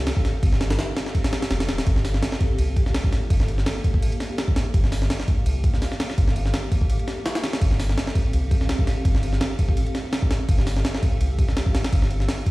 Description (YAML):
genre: drum and bass, jungle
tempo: 167 BPM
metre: 4/4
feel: swing 54% on 16ths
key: G minor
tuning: A4 = 442 Hz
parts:
  - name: granular cloud pad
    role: sustained chords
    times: 0.0-12.5 s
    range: Bb3 to F5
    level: -32 LUFS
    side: equal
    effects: built-in reverb
  - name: soft dub sub bass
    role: bass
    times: 0.0-12.3 s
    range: D1 to C2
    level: -22 LUFS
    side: equal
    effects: tube saturation
  - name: jungle sampler-style drum kit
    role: drums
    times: 0.1-12.5 s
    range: hi-hat, kick drum, ride cymbal, snare drum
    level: -22 LUFS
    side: equal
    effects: none
room: digital ambience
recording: played on a big sound system in a bare room, stone room reverb, vinyl crackle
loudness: -20 LUFS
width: side -20 dB against mid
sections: 0.0-12.5 A section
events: none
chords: 0.0 Fadd9/G; 1.9 Gm9; 7.6 Fadd9/G